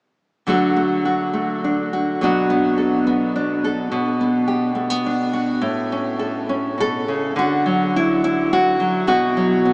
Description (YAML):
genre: folk, solo fingerstyle acoustic guitar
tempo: 105 BPM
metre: 3/4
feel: rubato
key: D major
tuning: A4 = 440 Hz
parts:
  - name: nylon-string guitar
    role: solo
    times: 0.5-9.7 s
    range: A2 to A4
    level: -20 LUFS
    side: equal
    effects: none
room: wet huge ambient reverb, RT60 8.3 s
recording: in a vast, echoing space, small speaker sound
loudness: -20 LUFS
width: mono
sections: 0.5-7.4 A section; 7.4-9.7 B section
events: none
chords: 0.5 D; 2.2 Bm; 3.9 G/B; 5.6 A; 7.4 D; 9.1 B5